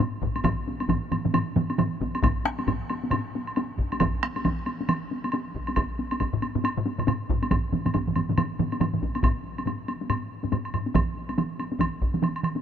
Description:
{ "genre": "japanese traditional, taiko drum ensemble", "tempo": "138 BPM", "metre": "4/4", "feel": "swing 60% on 16ths", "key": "none", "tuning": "none", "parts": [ { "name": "taiko ensemble", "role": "percussion", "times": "0.0-12.6 s", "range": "none", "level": "-30 LUFS", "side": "left 3 dB", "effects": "none" }, { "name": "taiko ensemble", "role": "percussion", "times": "0.0-3.2, 6.3-10.9 s", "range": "none", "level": "-30 LUFS", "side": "left 2 dB", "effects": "none" }, { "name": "woodblock", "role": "percussion", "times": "0.0-12.6 s", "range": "none", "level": "-33 LUFS", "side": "right 1 dB", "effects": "none" }, { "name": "taiko ensemble", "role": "percussion", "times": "0.2-12.1 s", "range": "none", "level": "-28 LUFS", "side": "equal", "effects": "none" }, { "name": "solo taiko drums", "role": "percussion", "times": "0.4-12.6 s", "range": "none", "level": "-29 LUFS", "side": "right 4 dB", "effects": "none" } ], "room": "light reverb", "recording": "none", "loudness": "-24 LUFS", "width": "side -9 dB against mid", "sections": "0.0-9.2 A section; 9.2-12.6 B section", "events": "speeding up 0.0-12.6", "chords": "none" }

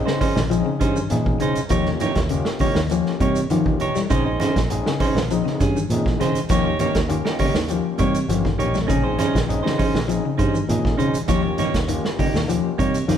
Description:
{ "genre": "afrobeat", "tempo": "100 BPM", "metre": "4/4", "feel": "straight", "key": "Bb dorian", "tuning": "A4 = 440 Hz", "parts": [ { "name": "overdriven tine electric piano", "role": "accompaniment", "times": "0.0-13.2 s", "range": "Bb3 to G5", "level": "-29 LUFS", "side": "left 2 dB", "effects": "medium tremolo" }, { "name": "clean electric guitar", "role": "arpeggios", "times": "0.1-13.2 s", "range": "Db3 to G3", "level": "-25 LUFS", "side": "left 8 dB", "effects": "none" }, { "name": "clean electric guitar", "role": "stabs", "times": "0.1-13.0 s", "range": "Bb3 to Db5", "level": "-24 LUFS", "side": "right 4 dB", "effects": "tape echo" }, { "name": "vintage drum kit", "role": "drums", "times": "0.1-13.2 s", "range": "hi-hat, kick drum, snare drum", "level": "-25 LUFS", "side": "right 1 dB", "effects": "none" }, { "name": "congas", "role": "percussion", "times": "0.2-13.2 s", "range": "none", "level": "-28 LUFS", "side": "right 1 dB", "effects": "none" }, { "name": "shekere", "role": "percussion", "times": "0.2-13.2 s", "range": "none", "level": "-33 LUFS", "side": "right 4 dB", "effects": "none" }, { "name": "fingered electric bass", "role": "bass", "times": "0.4-13.2 s", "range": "G1 to Eb3", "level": "-25 LUFS", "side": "equal", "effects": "none" } ], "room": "moderate large studio reverb, RT60 1.3 s", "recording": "band playing live in one room", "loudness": "-18 LUFS", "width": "side -9 dB against mid", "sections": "0.0-13.2 A section", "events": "tine electric piano fill 12.8-13.2", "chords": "0.0 Bbm11; 1.7 Eb7; 4.1 Bbm11; 6.5 Eb7; 8.9 Bbm11; 11.3 Eb7" }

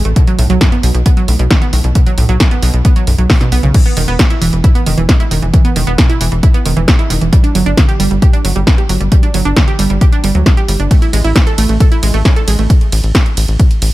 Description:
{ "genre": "uplifting trance", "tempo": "134 BPM", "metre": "4/4", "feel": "straight", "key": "unclear", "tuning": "A4 = 440 Hz", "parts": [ { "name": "tight sequencer bass", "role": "bass", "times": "0.0-13.9 s", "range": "E1 to D2", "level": "-13 LUFS", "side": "equal", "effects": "sidechain pumping" }, { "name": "wide unison pluck", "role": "arpeggios", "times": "0.1-12.7 s", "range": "F#2 to A4", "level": "-17 LUFS", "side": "right 3 dB", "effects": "sidechain pumping, tape echo" }, { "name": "punchy analog drum machine", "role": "drums", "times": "0.1-13.9 s", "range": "crash cymbal, hi-hat, ride cymbal, snare drum", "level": "-18 LUFS", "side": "equal", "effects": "none" }, { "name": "electronic kick drum", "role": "drums", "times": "0.2-13.7 s", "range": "none", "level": "-10 LUFS", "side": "equal", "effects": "none" } ], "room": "digital ambience", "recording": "none", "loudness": "-9 LUFS", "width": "side -17 dB against mid", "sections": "0.0-13.9 A section", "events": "none", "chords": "0.2 B5; 3.7 E5; 7.3 G5; 10.9 N.C." }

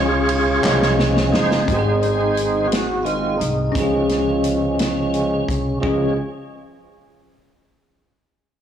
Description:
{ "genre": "slow gospel", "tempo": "58 BPM (dotted quarters)", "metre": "6/8", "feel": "straight", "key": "Db major", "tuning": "A4 = 435 Hz", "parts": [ { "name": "bell-like tine electric piano", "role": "accompaniment", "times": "0.0-6.2 s", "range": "Db2 to Ab4", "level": "-22 LUFS", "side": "left 2 dB", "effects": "fast stereo tremolo" }, { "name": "tonewheel organ", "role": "sustained chords", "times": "0.0-6.1 s", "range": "Eb3 to Db5", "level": "-20 LUFS", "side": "right 2 dB", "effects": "slow rotary speaker, overdrive, chorus vibrato" }, { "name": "upright bass", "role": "bass", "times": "0.0-6.2 s", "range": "Gb1 to Db2", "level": "-25 LUFS", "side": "equal", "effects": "tube saturation" }, { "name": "natural country drum kit", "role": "drums", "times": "0.3-6.0 s", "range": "hi-hat, kick drum, ride cymbal, snare drum", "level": "-24 LUFS", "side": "equal", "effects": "none" }, { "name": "group handclap", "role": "percussion", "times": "0.6-1.0 s", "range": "none", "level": "-26 LUFS", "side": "left 2 dB", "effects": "none" } ], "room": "moderate concert hall reverb, RT60 2.2 s", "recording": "blown-out, overdriven recording, overdrive, studio reverb", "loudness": "-16 LUFS", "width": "side -9 dB against mid", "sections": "0.0-1.7 A section; 1.7-5.8 B section; 5.8-7.9 C section", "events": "tonewheel organ solo 0.0-1.7, 1.7-5.8; drum fill 0.6-1.7", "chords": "0.0 Db; 1.7 Ab; 3.8 Db" }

